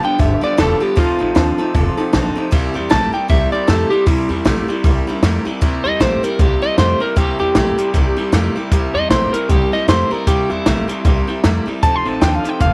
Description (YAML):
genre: rockabilly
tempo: 155 BPM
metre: 4/4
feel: swing 59% on 8ths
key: C mixolydian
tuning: A4 = 441 Hz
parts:
  - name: electric guitar at the edge of break-up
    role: melody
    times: 0.0-12.7 s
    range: E4 to C6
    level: -21 LUFS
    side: equal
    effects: tape echo
  - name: picked steel-string acoustic guitar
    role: accompaniment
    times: 0.0-12.7 s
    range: G2 to A4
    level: -25 LUFS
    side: equal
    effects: none
  - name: electric guitar through a small old amp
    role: riff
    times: 0.0-12.7 s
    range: F2 to A3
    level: -25 LUFS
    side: equal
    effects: none
  - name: upright bass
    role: bass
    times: 0.0-12.7 s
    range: E1 to F2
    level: -22 LUFS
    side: equal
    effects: none
  - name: compact cocktail drum kit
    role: drums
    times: 0.2-12.7 s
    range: hi-hat, kick drum, snare drum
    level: -19 LUFS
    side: equal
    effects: none
room: small room ambience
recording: none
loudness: -16 LUFS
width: mono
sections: 0.0-5.6 A section; 5.6-12.7 B section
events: clean electric guitar solo 0.0-5.6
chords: 0.0 G7; 1.0 F7; 2.5 C7; 11.8 F7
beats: 0.20 0.59 | 0.97 1.36 1.75 2.13 | 2.52 2.91 3.29 3.68 | 4.07 4.45 4.84 5.23 | 5.62 6.00 6.39 6.78 | 7.17 7.55 7.94 8.33 | 8.72 9.11 9.50 9.88 | 10.27 10.66 11.05 11.44 | 11.83 12.22 12.60